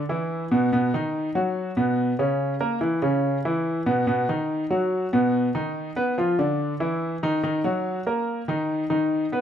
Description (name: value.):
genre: jazz.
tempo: 143 BPM.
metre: 4/4.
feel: straight.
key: unclear.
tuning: A4 = 440 Hz.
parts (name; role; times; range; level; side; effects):
clear baby grand piano; solo; 0.1-9.4 s; B2 to B4; -22 LUFS; equal; none.
room: moderate large studio reverb, RT60 0.9 s.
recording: none.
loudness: -22 LUFS.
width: side -9 dB against mid.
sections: 0.0-9.4 A section.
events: none.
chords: 0.0 Bsus4; 0.7 Badd9; 2.4 Bbdim; 3.2 Bsus24; 4.1 B; 5.8 Dm6; 6.6 Dsus2; 7.4 Ebm.